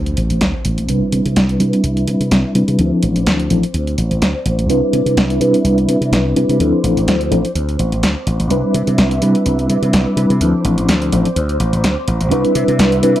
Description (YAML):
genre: filtered disco house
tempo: 126 BPM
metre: 4/4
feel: swing 55% on 16ths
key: D dorian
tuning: A4 = 439 Hz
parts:
  - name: string machine, full ensemble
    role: sustained chords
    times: 0.0-13.2 s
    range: B4 to D6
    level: -24 LUFS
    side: right 1 dB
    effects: phaser, ensemble chorus, low-pass filter
  - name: glassy slap bass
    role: bass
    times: 0.0-13.1 s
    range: A1 to C3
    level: -17 LUFS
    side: equal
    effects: tube saturation, low-pass filter
  - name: impact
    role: sound effects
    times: 0.0-0.9 s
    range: none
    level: -27 LUFS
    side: equal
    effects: none
  - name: punchy analog drum machine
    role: drums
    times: 0.1-13.2 s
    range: hi-hat, snare drum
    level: -19 LUFS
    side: equal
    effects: none
  - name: reed electric piano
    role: accompaniment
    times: 0.9-13.2 s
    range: F3 to B4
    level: -15 LUFS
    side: equal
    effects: fast tremolo, phaser, vintage 12-bit sampler grit, low-pass filter
room: digital ambience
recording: dry, gritty hardware recording, transformer saturation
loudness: -13 LUFS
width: side -13 dB against mid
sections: 0.0-13.2 A section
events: impact 0.0-0.9; filter sweep 0.0-13.2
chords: 0.0 D7(no3); 0.9 Cmaj9; 2.8 Dm7; 4.7 Cmaj9; 6.6 Dm7; 8.5 Cmaj9; 10.4 Dm7; 12.3 Cmaj9